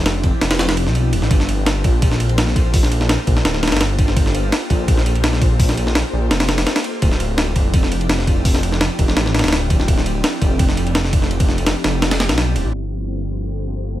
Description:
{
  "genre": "drum and bass, jungle",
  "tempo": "168 BPM",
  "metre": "4/4",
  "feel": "straight",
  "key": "G minor",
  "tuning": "A4 = 440 Hz",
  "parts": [
    { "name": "ethereal airy pad", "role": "sustained chords", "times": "0.0-14.0 s", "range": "F3 to C5", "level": "-25 LUFS", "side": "equal", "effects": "ensemble chorus, built-in reverb" },
    { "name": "dark detuned saw bass", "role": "bass", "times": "0.0-14.0 s", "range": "D1 to B1", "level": "-19 LUFS", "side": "equal", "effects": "none" },
    { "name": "breakbeat sampler-style drum kit", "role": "drums", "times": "0.1-12.6 s", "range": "hi-hat, kick drum, ride cymbal, snare drum", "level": "-17 LUFS", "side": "equal", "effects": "small room ambience" }
  ],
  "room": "little or no reverb",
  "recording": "low-pass filter",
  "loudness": "-15 LUFS",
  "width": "side -14 dB against mid",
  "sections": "0.0-12.7 A section; 12.7-14.0 B section",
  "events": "drop 0.0-12.7; kick drops out 0.6-1.3, 12.0-12.7; filter sweep 12.7-14.0",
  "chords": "0.0 Dm11; 1.3 Gm11; 7.0 Dm11; 12.7 Gm11"
}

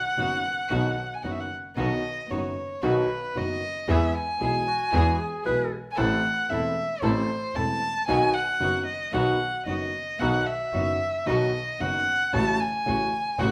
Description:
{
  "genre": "tango",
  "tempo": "114 BPM",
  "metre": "4/4",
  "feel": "rubato",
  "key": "unclear",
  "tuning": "A4 = 441 Hz",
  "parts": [
    { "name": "dark violin", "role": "second line", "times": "0.0-13.5 s", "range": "B4 to A5", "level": "-29 LUFS", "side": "equal", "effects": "none" },
    { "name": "warm concert grand piano", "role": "accompaniment", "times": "0.2-13.5 s", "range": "E1 to A4", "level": "-31 LUFS", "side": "equal", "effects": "none" },
    { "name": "warm chamber string section", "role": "stabs", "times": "0.2-13.5 s", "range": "A3 to A4", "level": "-37 LUFS", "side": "equal", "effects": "none" },
    { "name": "clear double bass", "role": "bass", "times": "0.2-13.5 s", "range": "E1 to E2", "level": "-32 LUFS", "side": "equal", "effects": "none" },
    { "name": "clear clarinet", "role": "second line", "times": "4.7-5.8 s", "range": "F#4 to B4", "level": "-32 LUFS", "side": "equal", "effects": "none" }
  ],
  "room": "moderate large studio reverb, RT60 1.1 s",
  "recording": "none",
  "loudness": "-26 LUFS",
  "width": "mono",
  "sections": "0.0-13.5 A section",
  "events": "violin solo 0.0-13.5",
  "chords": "0.0 B; 3.9 E; 6.0 Am; 8.1 B; 12.3 F#m/A"
}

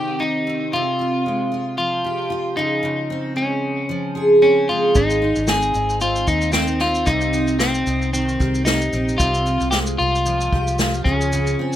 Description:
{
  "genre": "acoustic pop",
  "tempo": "113 BPM",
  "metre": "4/4",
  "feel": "swing 55% on 16ths",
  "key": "unclear",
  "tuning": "A4 = 440 Hz",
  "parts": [
    { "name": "electric guitar at the edge of break-up", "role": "second line", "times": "0.0-11.8 s", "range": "C4 to Ab4", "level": "-21 LUFS", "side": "left 1 dB", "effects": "digital delay" },
    { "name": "picked steel-string acoustic guitar", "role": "accompaniment", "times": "0.0-11.8 s", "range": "C3 to Bb4", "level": "-21 LUFS", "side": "right 1 dB", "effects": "double-tracked left and right" },
    { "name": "vintage muted fingered electric bass", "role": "bass", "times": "5.0-11.5 s", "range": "Ab1 to Eb2", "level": "-24 LUFS", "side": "equal", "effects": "none" },
    { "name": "unplugged drum kit", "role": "drums", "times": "5.0-11.8 s", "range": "kick drum, shaker, snare drum", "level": "-23 LUFS", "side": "equal", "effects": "none" }
  ],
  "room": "light reverb",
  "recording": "rough home demo mix",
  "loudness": "-17 LUFS",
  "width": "side -11 dB against mid",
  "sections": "0.0-11.8 A section",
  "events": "none",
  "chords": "0.0 Cm; 0.7 Fmadd9/C; 2.6 Dbmaj7; 5.0 Abadd9; 7.1 Cm; 9.2 Fmadd9/C; 11.1 Dbmaj7"
}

